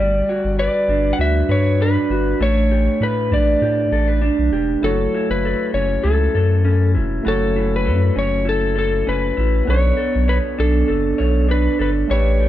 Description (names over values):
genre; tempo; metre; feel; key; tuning
indie pop; 99 BPM; 4/4; swing 55% on 16ths; unclear; A4 = 441 Hz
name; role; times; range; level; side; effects
electric slide guitar; melody; 0.0-12.5 s; A4 to F#5; -21 LUFS; left 3 dB; none
electric guitar through a small old amp; accompaniment; 0.0-12.5 s; D3 to C#5; -22 LUFS; right 2 dB; warbly pitch drift
saturated sub bass; bass; 0.0-12.5 s; E1 to A2; -18 LUFS; equal; none
barky tine electric piano; accompaniment; 4.8-12.5 s; A3 to C#5; -26 LUFS; right 4 dB; overdrive
room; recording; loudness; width
light reverb; band playing live in one room; -15 LUFS; side -12 dB against mid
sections
0.0-12.5 A section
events
none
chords
0.0 Gmaj7; 2.4 A9sus4; 4.8 F#m7; 9.7 Bm9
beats
0.58 1.19 1.80 | 2.40 3.01 3.62 4.22 | 4.83 5.44 6.04 6.65 | 7.26 7.86 8.47 9.07 | 9.68 10.29 10.89 11.50 | 12.11